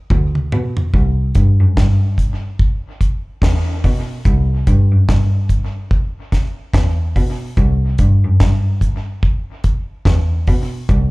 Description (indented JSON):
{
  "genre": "roots reggae",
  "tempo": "72 BPM",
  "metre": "4/4",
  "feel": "swing 59% on 16ths",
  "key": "unclear",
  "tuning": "A4 = 440 Hz",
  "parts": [
    { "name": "rich cello", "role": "bass", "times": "0.1-11.1 s", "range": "C2 to B2", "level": "-15 LUFS", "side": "equal", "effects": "none" },
    { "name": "deep reggae drum kit", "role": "drums", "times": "0.1-11.1 s", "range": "hi-hat, kick drum, snare drum, toms", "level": "-16 LUFS", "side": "equal", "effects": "none" }
  ],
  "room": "little or no reverb",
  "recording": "live gig heard through the venue's PA, club reverb",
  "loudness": "-14 LUFS",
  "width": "side -23 dB against mid",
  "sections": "0.9-11.1 A section",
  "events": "drum fill 0.1-0.9",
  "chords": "none"
}